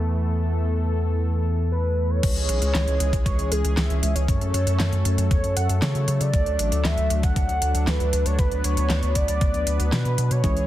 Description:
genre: synthwave.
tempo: 117 BPM.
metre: 4/4.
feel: straight.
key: C# phrygian.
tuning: A4 = 440 Hz.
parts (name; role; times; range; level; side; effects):
brassy analog pad; sustained chords; 0.0-10.7 s; C#3 to B4; -30 LUFS; left 1 dB; chorus, sidechain pumping.
round analog bass; bass; 0.0-10.7 s; A1 to C#3; -22 LUFS; equal; none.
warm velvety synth lead; melody; 1.7-10.7 s; G#4 to F#5; -27 LUFS; right 1 dB; chorus, digital delay.
electronic kick drum; drums; 2.2-10.5 s; none; -23 LUFS; equal; none.
pop drum kit; drums; 2.2-10.7 s; crash cymbal, handclaps, hi-hat, snare drum; -28 LUFS; equal; none.
tine electric piano; stabs; 10.4-10.7 s; E3 to G#4; -26 LUFS; right 2 dB; vintage 12-bit sampler grit.
room: light reverb, digital ambience.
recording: dense, heavily limited modern master.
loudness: -20 LUFS.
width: side -14 dB against mid.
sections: 0.0-2.2 A section; 2.2-10.7 B section.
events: none.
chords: 0.0 Esus4; 2.2 C#m; 4.3 F#m; 6.3 D; 8.4 Bm/D.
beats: | 0.18 0.69 1.21 1.72 | 2.23 2.75 3.26 3.77 | 4.28 4.80 5.31 5.82 | 6.33 6.85 7.36 7.87 | 8.39 8.90 9.41 9.93 | 10.44.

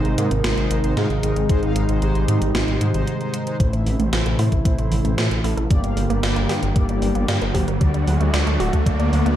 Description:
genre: synthwave.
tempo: 114 BPM.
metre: 4/4.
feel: straight.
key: unclear.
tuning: A4 = 440 Hz.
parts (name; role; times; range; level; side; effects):
soft octave-layered synth lead; melody; 0.0-3.5 s; G4 to Bb4; -27 LUFS; equal; chorus, phaser, digital delay.
warm analog pad; sustained chords; 0.0-9.4 s; C3 to G4; -25 LUFS; right 1 dB; chorus, sidechain pumping.
mellow synth brass; stabs; 0.0-9.4 s; G2 to F#5; -28 LUFS; left 2 dB; chorus, digital delay.
wide detuned saw bass; bass; 0.0-9.4 s; D1 to A2; -21 LUFS; equal; chorus, sidechain pumping.
gated 80s digital drum machine; drums; 0.0-9.4 s; hi-hat, snare drum; -27 LUFS; right 1 dB; gated reverb, gated reverb snare, overdrive, high-pass filter on hats, high-pass filter on snare, high-pass filter on room.
electronic kick drum; drums; 1.5-9.0 s; none; -19 LUFS; equal; overdrive.
wide unison pluck; arpeggios; 3.6-9.4 s; E3 to D5; -29 LUFS; right 2 dB; digital delay.
riser; sound effects; 6.0-9.4 s; none; -29 LUFS; equal; none.
room: light reverb, digital ambience.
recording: dark, warm production.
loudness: -18 LUFS.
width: side -11 dB against mid.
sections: 0.0-3.6 A section; 3.6-9.4 B section.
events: break 3.1-3.6; filter sweep on synth arpeggio sound 3.6-9.4; filter sweep on analog polysynth 3.6-9.4; riser 6.0-9.4.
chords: 0.0 Ab; 3.6 Am; 5.7 Gm; 7.8 D.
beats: 0.44 0.97 | 1.50 2.02 2.55 3.07 | 3.60 4.13 4.65 5.18 | 5.71 6.23 6.76 7.29 | 7.81 8.34 8.86.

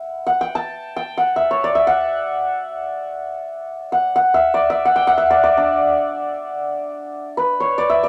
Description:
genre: Persian modal ensemble.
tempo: free time.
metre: none.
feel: none.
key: D dastgah mahur.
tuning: A4 = 440 Hz.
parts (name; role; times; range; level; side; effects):
santur; solo; 0.0-8.1 s; D4 to A5; -19 LUFS; equal; none.
room: moderate studio ambience, RT60 0.5 s.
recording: none.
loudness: -19 LUFS.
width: mono.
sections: 0.0-7.0 A section; 7.0-8.1 A section.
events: none.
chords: none.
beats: free time.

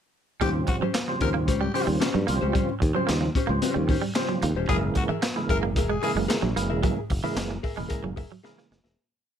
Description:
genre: funk.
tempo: 112 BPM.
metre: 4/4.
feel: straight.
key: Eb mixolydian.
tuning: A4 = 440 Hz.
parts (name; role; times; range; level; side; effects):
growling tenor saxophone; second line; 0.4-6.1 s; Gb4 to Bb4; -30 LUFS; left 5 dB; none.
vintage hollow-body jazz guitar; accompaniment; 0.4-9.0 s; Db4 to Fb5; -31 LUFS; left 6 dB; none.
semi-hollow electric guitar; riff; 0.4-8.8 s; Fb3 to Bb3; -31 LUFS; right 7 dB; none.
percussive tonewheel organ; stabs; 0.4-8.8 s; Db3 to C4; -30 LUFS; right 3 dB; overdrive, chorus vibrato, stopped rotary speaker.
modern bright fingered electric bass; bass; 0.4-8.9 s; Eb1 to G2; -28 LUFS; equal; none.
crunchy breakbeat drum kit; drums; 0.4-9.0 s; handclaps, hi-hat, kick drum, snare drum; -28 LUFS; equal; none.
room: light reverb.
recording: none.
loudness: -23 LUFS.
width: side -9 dB against mid.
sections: 0.4-9.0 A section.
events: fade-out 6.8-9.0; drum fill 8.4-9.0.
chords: 0.4 Eb13; 4.7 Gb9.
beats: | 0.42 0.95 1.48 2.02 | 2.55 3.08 3.62 4.15 | 4.69 5.23 5.76 6.30 | 6.83 7.37 7.91 8.44.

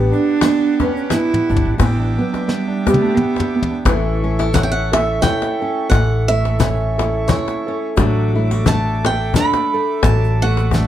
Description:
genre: acoustic folk duo or small band.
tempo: 87 BPM.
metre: 3/4.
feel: swing 56% on 8ths.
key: A mixolydian.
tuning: A4 = 440 Hz.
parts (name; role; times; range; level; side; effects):
nylon-string guitar; accompaniment; 0.0-10.9 s; A2 to G4; -23 LUFS; left 3 dB; none.
accordion; sustained chords; 0.0-10.9 s; G4 to D6; -30 LUFS; right 1 dB; none.
felt-muted upright piano; arpeggios; 0.0-10.9 s; E3 to A4; -24 LUFS; right 3 dB; none.
upright bass; bass; 0.0-10.9 s; G1 to A1; -18 LUFS; equal; none.
warm cello; second line; 0.1-3.9 s; E3 to E4; -19 LUFS; right 4 dB; none.
egg shaker; percussion; 0.1-10.9 s; none; -39 LUFS; right 8 dB; none.
cajon; percussion; 0.3-10.9 s; none; -20 LUFS; left 5 dB; none.
soft brush drum kit; drums; 0.4-10.9 s; hi-hat, kick drum, ride cymbal, snare drum, toms; -21 LUFS; equal; none.
picked swing-style acoustic guitar; melody; 4.5-10.9 s; C#5 to B5; -20 LUFS; right 3 dB; none.
room: moderate studio reverb, RT60 0.7 s.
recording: dark, warm production.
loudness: -14 LUFS.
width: side -11 dB against mid.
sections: 0.0-1.8 A section; 1.8-3.9 B section; 3.9-10.9 C section.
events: cello solo 0.0-1.8; drum fill 1.1-1.8, 2.5-3.9.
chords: 0.0 Em7/A; 3.9 A; 8.0 D/A.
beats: 0.41 1.10 | 1.79 2.48 3.17 | 3.85 4.54 5.23 | 5.91 6.60 7.29 | 7.98 8.66 9.35 | 10.04 10.73.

